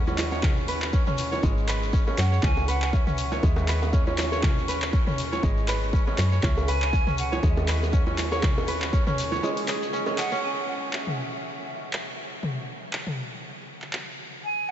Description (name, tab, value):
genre	afro house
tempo	120 BPM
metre	4/4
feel	swing 55% on 16ths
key	C# minor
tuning	A4 = 441 Hz
part	breathy mellow jazz flute	melody	0.0-14.7 s	E5 to G#5	-35 LUFS	right 2 dB	analog delay
part	kora	arpeggios	0.0-12.1 s	G#3 to C#5	-31 LUFS	right 1 dB	sidechain pumping, analog delay
part	woody FM bass	bass	0.0-9.4 s	G#1 to F#2	-27 LUFS	equal	sidechain pumping
part	bongos	percussion	0.1-10.2 s	none	-33 LUFS	right 3 dB	none
part	shekere	percussion	0.1-10.4 s	none	-40 LUFS	left 6 dB	none
part	house drum kit	drums	0.2-14.0 s	handclaps, hi-hat, toms	-32 LUFS	left 1 dB	studio reverb
part	electronic kick drum	drums	0.4-9.0 s	none	-23 LUFS	equal	studio reverb
room	moderate huge ambient reverb, RT60 7.5 s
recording	dreamy mix soaked in reverb, nothing above 7.9 kHz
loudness	-23 LUFS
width	side -10 dB against mid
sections	0.0-10.4 A section; 10.4-14.7 B section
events	band accent 10.2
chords	0.0 C#m9; 10.4 C#m